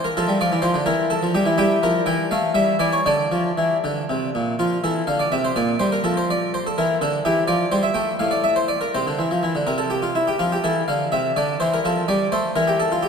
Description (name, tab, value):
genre	classical, baroque-style suite movement for harpsichord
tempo	77-86 BPM (dotted quarters)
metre	6/8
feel	rubato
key	D minor, F major from 4.6 s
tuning	A4 = 440 Hz
part	harpsichord	solo	0.0-13.1 s	A2 to G5	-18 LUFS	equal	none
room	wet cathedral reverb, RT60 4.9 s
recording	none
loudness	-18 LUFS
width	side -6 dB against mid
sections	0.0-4.6 A section; 4.6-13.1 A section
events	none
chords	0.2 Dm11; 0.9 Edim; 2.3 A5; 3.1 Dm; 4.6 Dmadd9; 5.3 C5; 6.1 N.C.; 6.8 Gm69; 7.5 F; 8.2 N.C.; 8.9 Csus4; 9.7 N.C.; 10.4 Dmadd9; 11.1 C; 11.9 F; 12.6 N.C.